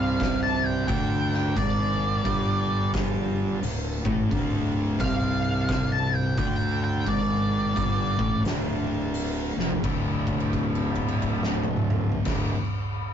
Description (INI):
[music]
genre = stoner and doom metal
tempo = 87 BPM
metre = 4/4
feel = swing 62% on 8ths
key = D minor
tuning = A4 = 436 Hz
[part]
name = octave-fuzz lead guitar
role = melody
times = 0.0-8.4 s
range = D5 to A5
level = -28 LUFS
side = equal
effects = distortion
[part]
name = tonewheel organ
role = sustained chords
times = 0.0-12.5 s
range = D4 to A5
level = -41 LUFS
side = right 2 dB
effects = overdrive, slow rotary speaker
[part]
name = thick fuzz guitar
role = riff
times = 0.0-12.5 s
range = D2 to D4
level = -30 LUFS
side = left 5 dB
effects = distortion
[part]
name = thick fuzz guitar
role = riff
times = 0.0-12.5 s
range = D2 to D4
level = -31 LUFS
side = right 4 dB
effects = distortion
[part]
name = fuzz fingered electric bass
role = bass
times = 0.0-12.5 s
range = D1 to D2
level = -30 LUFS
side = equal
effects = overdrive
[part]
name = oversized low-tuned drum kit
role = drums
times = 0.2-12.4 s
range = crash cymbal, hi-hat, kick drum, snare drum, toms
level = -27 LUFS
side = equal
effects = none
[sound]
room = light reverb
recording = rough rehearsal-room recording, warm saturation, nothing above 7.7 kHz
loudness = -23 LUFS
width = side -8 dB against mid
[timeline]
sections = 0.0-9.8 A section; 9.8-12.6 B section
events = lead electric guitar solo 0.0-9.8; drum fill 9.5-9.8; held note 9.8-12.2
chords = 0.0 Dm; 9.8 D5